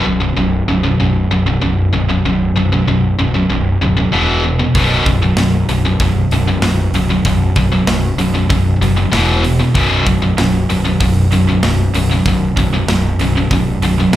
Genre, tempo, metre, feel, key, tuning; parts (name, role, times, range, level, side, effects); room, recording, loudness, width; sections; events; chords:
heavy metal; 96 BPM; 4/4; straight; A4 = 437 Hz
heavy high-gain guitar; riff; 0.0-14.2 s; B1 to E3; -18 LUFS; right 6 dB; distortion
tight distorted guitar; riff; 0.0-14.1 s; B1 to E3; -16 LUFS; left 4 dB; distortion
fuzz fingered electric bass; bass; 0.1-14.2 s; B0 to F#1; -16 LUFS; equal; overdrive
tight metal drum kit; drums; 4.7-14.2 s; hi-hat, kick drum, snare drum; -19 LUFS; equal
little or no reverb; live gig heard through the venue's PA, club reverb; -12 LUFS; side -13 dB against mid
0.0-14.2 A section
0.0 B5; 4.1 E5; 4.8 B5; 9.1 E5; 9.8 B5